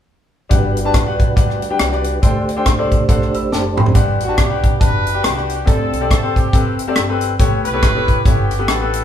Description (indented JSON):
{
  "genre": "uptempo gospel",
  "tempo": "139 BPM",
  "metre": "4/4",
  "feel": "swing 59% on 8ths",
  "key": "G major",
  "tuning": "A4 = 441 Hz",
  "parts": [
    { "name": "bright concert grand piano", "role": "accompaniment", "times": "0.5-9.0 s", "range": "G2 to E6", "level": "-20 LUFS", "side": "left 3 dB", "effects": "none" },
    { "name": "mellow tonewheel organ", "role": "sustained chords", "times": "0.5-3.9 s", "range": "G3 to C5", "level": "-23 LUFS", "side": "right 2 dB", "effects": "slow rotary speaker, chorus vibrato" },
    { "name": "upright bass", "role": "bass", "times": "0.5-9.0 s", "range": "E1 to D2", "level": "-24 LUFS", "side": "equal", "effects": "none" },
    { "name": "tight funk drum kit", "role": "drums", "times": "0.5-9.0 s", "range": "hi-hat, kick drum, rim click, snare drum, toms", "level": "-15 LUFS", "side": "equal", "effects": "none" },
    { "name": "warm horn section", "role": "melody", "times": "4.2-9.0 s", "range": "B3 to B4", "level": "-22 LUFS", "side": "right 1 dB", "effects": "none" }
  ],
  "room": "moderate large studio reverb, RT60 1.2 s",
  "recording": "band playing live in one room",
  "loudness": "-13 LUFS",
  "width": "side -10 dB against mid",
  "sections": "0.5-4.0 A section; 4.0-9.0 B section",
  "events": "drum fill 3.5-4.0",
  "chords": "0.5 Gmaj7; 2.2 D7sus4; 7.4 A9"
}